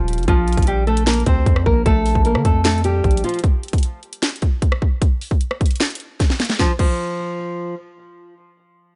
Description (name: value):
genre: hip hop, trap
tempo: 152 BPM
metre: 4/4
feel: half-time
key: unclear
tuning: A4 = 439 Hz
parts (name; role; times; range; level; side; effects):
- nylon-string guitar; melody; 0.0-3.4, 6.6-7.7 s; F3 to C5; -23 LUFS; equal; low-pass filter
- long sustained 808-style bass; bass; 0.0-3.2 s; Eb1 to D3; -21 LUFS; equal; none
- trap drum kit; drums; 0.1-6.9 s; crash cymbal, hi-hat, kick drum, rim click, snare drum; -20 LUFS; equal; none
room: little or no reverb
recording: nothing above 10.7 kHz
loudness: -18 LUFS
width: mono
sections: 0.0-6.6 A section; 6.6-9.0 B section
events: break 3.4-6.6; drum fill 6.2-6.6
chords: 0.3 Bb5; 3.4 N.C.